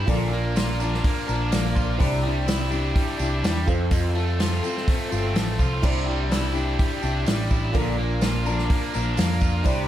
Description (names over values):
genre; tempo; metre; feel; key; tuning
folk rock and heartland rock; 125 BPM; 4/4; straight; unclear; A4 = 440 Hz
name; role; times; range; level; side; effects
picked steel-string acoustic guitar; accompaniment; 0.0-9.9 s; Bb2 to Bb4; -28 LUFS; left 5 dB; none
reed electric piano; accompaniment; 0.0-9.9 s; E4 to Bb5; -35 LUFS; right 8 dB; fast tremolo
bright tonewheel organ; sustained chords; 0.0-9.9 s; G4 to D6; -39 LUFS; right 1 dB; none
biting overdriven guitar; riff; 0.0-9.9 s; F2 to F4; -29 LUFS; right 2 dB; none
picked electric bass; bass; 0.0-9.9 s; G1 to F2; -25 LUFS; equal; none
natural country drum kit; drums; 0.1-9.8 s; crash cymbal, hi-hat, kick drum, snare drum; -24 LUFS; equal; none
tambourine; percussion; 0.1-9.8 s; none; -42 LUFS; right 10 dB; none
room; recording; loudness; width
light reverb; none; -21 LUFS; side -12 dB against mid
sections
0.0-9.9 A section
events
reed electric piano fill 1.0-2.0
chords
0.1 Bb; 2.0 Cadd9; 3.7 F; 5.8 Cadd9; 7.8 Bb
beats
| 0.07 0.55 1.03 1.51 | 2.00 2.48 2.96 3.44 | 3.92 4.39 4.88 5.36 | 5.83 6.31 6.79 7.27 | 7.75 8.23 8.71 9.19 | 9.67